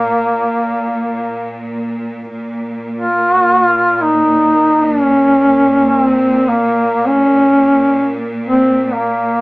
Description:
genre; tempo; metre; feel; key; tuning
caucasian folk, Caucasian lament; free time; none; none; Bb minor; A4 = 440 Hz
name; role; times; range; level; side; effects
warm duduk; melody; 0.0-9.4 s; Bb3 to F4; -11 LUFS; equal; none
bright symphonic cello section; drone; 0.0-9.4 s; Bb2; -21 LUFS; right 1 dB; none
room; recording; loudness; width
moderate studio reverb, RT60 0.6 s; band playing live in one room, small speaker sound; -11 LUFS; side -26 dB against mid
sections
0.0-2.3 A section; 2.3-9.4 A section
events
none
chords
none

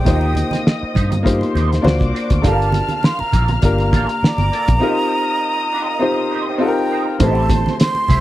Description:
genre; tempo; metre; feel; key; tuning
lush 1970s-style soul; 101 BPM; 4/4; swing 54% on 16ths; unclear; A4 = 439 Hz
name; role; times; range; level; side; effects
breathy jazz flute; melody; 0.0-8.2 s; G5 to C6; -22 LUFS; right 2 dB; none
muted studio string section; second line; 0.0-8.2 s; Bb4 to F6; -27 LUFS; left 3 dB; none
clear concert grand piano; accompaniment; 0.0-8.2 s; A3 to C5; -20 LUFS; left 2 dB; none
vintage muted fingered electric bass; bass; 0.0-8.2 s; G1 to G2; -18 LUFS; equal; none
electric guitar through a small old amp; riff; 0.1-8.2 s; Bb3 to C5; -27 LUFS; right 6 dB; wah, ensemble chorus
cloth-damped thuddy drum kit; drums; 0.1-8.2 s; hi-hat, kick drum, snare drum; -17 LUFS; equal; none
congas; percussion; 0.1-8.2 s; none; -25 LUFS; right 4 dB; none
room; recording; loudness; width
little or no reverb; dry, close 1970s-style studio recording; -14 LUFS; side -15 dB against mid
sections
0.0-7.2 A section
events
break 4.8-7.2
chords
0.1 Eb6; 1.8 D7alt; 2.4 Gm9; 4.8 Eb6; 7.2 Am7

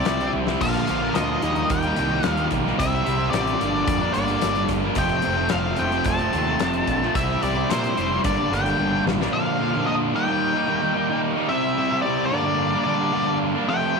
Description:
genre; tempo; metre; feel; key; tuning
classic rock; 110 BPM; 4/4; straight; G minor; A4 = 440 Hz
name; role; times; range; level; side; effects
octave-fuzz lead guitar; melody; 0.0-14.0 s; C5 to A5; -25 LUFS; left 3 dB; distortion, slapback echo
crunchy overdriven guitar; riff; 0.0-14.0 s; F2 to F4; -22 LUFS; right 1 dB; none
growling picked electric bass; bass; 0.1-9.3 s; F1 to Bb2; -29 LUFS; right 1 dB; overdrive
huge arena drum kit; drums; 0.1-9.3 s; crash cymbal, hi-hat, kick drum, snare drum, toms; -29 LUFS; left 5 dB; none
room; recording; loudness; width
small room ambience; 1960s-style stereo; -20 LUFS; side -4 dB against mid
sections
0.0-9.3 A section; 9.3-14.0 A section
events
drum fill 0.3, 8.8-9.3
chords
0.0 C; 0.6 Bb; 1.4 Eb; 2.8 C; 3.6 Gm; 5.0 F; 7.2 C; 8.2 Gm; 9.3 Bb; 10.1 Eb; 11.5 C; 12.3 Gm

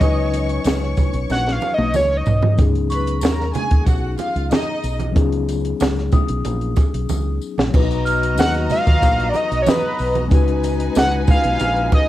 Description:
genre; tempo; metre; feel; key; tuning
lush 1970s-style soul; 93 BPM; 4/4; straight; unclear; A4 = 441 Hz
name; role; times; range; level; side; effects
fat analog lead; melody; 0.0-2.6, 8.4-12.1 s; B4 to F#5; -20 LUFS; equal; cassette tape
warm symphonic violin section; second line; 0.0-12.1 s; D#4 to C#6; -27 LUFS; equal; cassette tape
mellow tine electric piano; accompaniment; 0.0-12.1 s; F#3 to B4; -25 LUFS; left 9 dB; medium stereo tremolo, cassette tape
fingered electric bass; bass; 0.0-11.9 s; A#1 to D#2; -22 LUFS; equal; none
compact cocktail drum kit; drums; 0.0-12.1 s; crash cymbal, hi-hat, kick drum, snare drum, toms; -17 LUFS; equal; cassette tape
congas; percussion; 0.0-12.1 s; none; -28 LUFS; right 8 dB; none
tambourine; percussion; 0.0-11.8 s; none; -40 LUFS; left 9 dB; none
large celesta; texture; 0.0-10.6 s; G#5 to E#6; -29 LUFS; equal; cassette tape
room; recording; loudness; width
light reverb, small room ambience; home recording on cassette; -16 LUFS; side -14 dB against mid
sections
0.0-2.6 A section; 2.6-7.7 B section; 7.7-12.1 C section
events
analog synth lead solo 0.0-2.6; drum fill 1.3-2.6, 7.1-7.7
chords
0.0 C#9sus4; 7.7 Bmaj7; 10.3 C#9sus4

